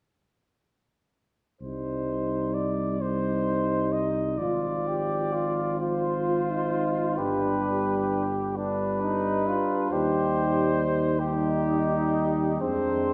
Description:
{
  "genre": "classical, hymn-like piece for brass band",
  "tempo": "44 BPM (dotted quarters)",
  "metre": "12/8",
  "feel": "rubato",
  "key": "C minor",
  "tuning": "A4 = 439 Hz",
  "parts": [
    { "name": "mellow cornet", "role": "melody", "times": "1.6-13.1 s", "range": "G4 to Eb5", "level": "-32 LUFS", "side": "equal", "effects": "none" },
    { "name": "mellow trombone", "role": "accompaniment", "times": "1.6-13.1 s", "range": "F3 to Ab3", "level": "-35 LUFS", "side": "equal", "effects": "none" },
    { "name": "warm euphonium", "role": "accompaniment", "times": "1.6-13.1 s", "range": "D4 to F4", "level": "-33 LUFS", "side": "equal", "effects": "none" },
    { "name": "dark tuba", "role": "bass", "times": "1.6-13.1 s", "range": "G1 to F2", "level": "-34 LUFS", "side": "equal", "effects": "none" },
    { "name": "mellow flugelhorn", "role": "second line", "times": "4.4-13.1 s", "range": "C4 to G4", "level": "-32 LUFS", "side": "equal", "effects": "none" }
  ],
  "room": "wet scoring stage reverb, RT60 1.8 s",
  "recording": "heard from further back in the room",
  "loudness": "-26 LUFS",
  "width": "mono",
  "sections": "1.6-13.1 A section",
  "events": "none",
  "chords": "1.6 Cm; 4.4 Fm/Ab; 7.2 G; 9.9 Cm/Eb; 12.6 Dm7b5/F"
}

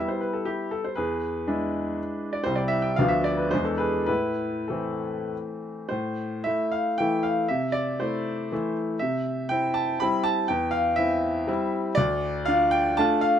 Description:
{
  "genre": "classical, romantic triple-time dance for piano with dotted rhythms",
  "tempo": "93-129 BPM",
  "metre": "3/4",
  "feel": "rubato",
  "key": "A minor",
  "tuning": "A4 = 440 Hz",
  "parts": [
    { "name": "bright baby grand piano", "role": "solo", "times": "0.0-13.4 s", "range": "C2 to B5", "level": "-23 LUFS", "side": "equal", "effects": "none" }
  ],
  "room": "light reverb",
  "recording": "close, detailed microphones",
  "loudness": "-23 LUFS",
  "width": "side -9 dB against mid",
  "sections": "0.0-5.9 A section; 5.9-13.4 B section",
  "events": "none",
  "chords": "0.0 Em; 1.0 E7; 2.5 C; 3.0 Bdim/D; 3.5 E7; 4.1 Am; 7.5 Am/C; 9.0 C; 10.5 C/E; 12.0 Dm"
}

